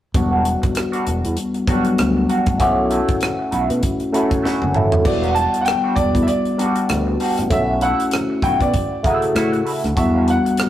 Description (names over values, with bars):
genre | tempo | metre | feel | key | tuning
lush 1970s-style soul | 98 BPM | 4/4 | swing 58% on 16ths | E dorian | A4 = 439 Hz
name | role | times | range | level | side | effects
barky tine electric piano | accompaniment | 0.1-10.7 s | C#3 to A4 | -19 LUFS | left 1 dB | overdrive, phaser
clean electric guitar | riff | 0.1-10.6 s | G3 to A4 | -26 LUFS | right 4 dB | wah
modern bright fingered electric bass | bass | 0.1-10.4 s | E1 to B2 | -23 LUFS | equal | none
tight funk drum kit | drums | 0.1-10.7 s | crash cymbal, hi-hat, kick drum, rim click, snare drum, toms | -22 LUFS | right 1 dB | none
bright grand piano | melody | 5.1-10.7 s | D5 to A5 | -21 LUFS | equal | none
room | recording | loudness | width
moderate stone room reverb, RT60 1.3 s | rough rehearsal-room recording | -16 LUFS | side -12 dB against mid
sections
0.1-5.1 A section; 5.1-10.7 B section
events
drum fill 4.4-5.1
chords
0.1 Em9; 2.6 B7sus4; 5.1 Em9; 7.5 B7sus4; 10.0 Em9